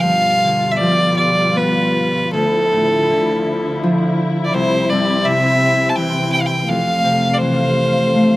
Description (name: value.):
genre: celtic folk, Celtic slow air.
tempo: 76-84 BPM.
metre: 3/4.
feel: rubato.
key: G mixolydian.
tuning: A4 = 441 Hz.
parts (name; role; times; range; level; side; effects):
clear fiddle; melody; 0.0-8.4 s; A4 to A5; -16 LUFS; equal; none.
Celtic harp; accompaniment; 0.0-8.4 s; C2 to B4; -19 LUFS; left 1 dB; slapback echo.
dark studio string section; sustained chords; 0.0-8.4 s; B2 to F5; -20 LUFS; left 1 dB; none.
room: little or no reverb.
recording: recorded outdoors, with no room sound.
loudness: -14 LUFS.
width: side -17 dB against mid.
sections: 0.0-8.4 A section.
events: none.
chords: 0.0 G7; 2.3 Dmadd9; 4.5 C; 6.7 Fmaj7.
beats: | 0.02 0.79 1.55 | 2.31 3.07 3.80 | 4.52 5.24 5.95 | 6.67 7.40 8.16.